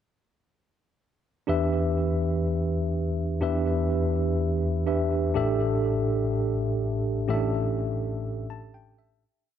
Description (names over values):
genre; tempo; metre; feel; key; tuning
pop; 124 BPM; 4/4; straight; unclear; A4 = 441 Hz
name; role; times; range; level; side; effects
tine electric piano; solo; 1.5-9.2 s; A1 to A5; -24 LUFS; equal; medium stereo tremolo, tape echo
room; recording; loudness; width
light reverb; none; -24 LUFS; side -9 dB against mid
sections
1.5-9.2 bridge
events
fade-out 7.3-9.2; tine electric piano fill 8.3-9.2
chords
1.5 Em7; 5.4 A7sus4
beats
| 1.48 1.97 2.45 2.94 | 3.42 3.90 4.39 4.87 | 5.36 5.84 6.32 6.81 | 7.29 7.77 8.26 8.74